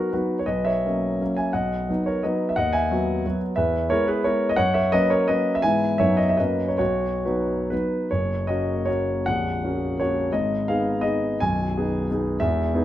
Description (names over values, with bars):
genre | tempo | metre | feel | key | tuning
classical, romantic triple-time dance for piano with dotted rhythms | 126-194 BPM | 3/4 | rubato | B major, F# major from 8.1 s | A4 = 440 Hz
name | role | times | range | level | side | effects
dark concert grand piano | solo | 0.0-12.8 s | A#0 to G#5 | -21 LUFS | equal | none
room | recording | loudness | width
moderate recital hall reverb, RT60 1.7 s | close, detailed microphones | -21 LUFS | side -12 dB against mid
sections
0.0-8.1 A section; 8.1-12.8 B section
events
none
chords
0.5 F#7/B; 1.5 B; 2.6 B/D#; 3.6 E; 4.6 F#; 5.6 E/G#; 6.0 B/F#; 6.4 F#; 6.8 B; 8.1 F#; 9.3 F#/A#; 10.3 G#m; 11.4 G#m/B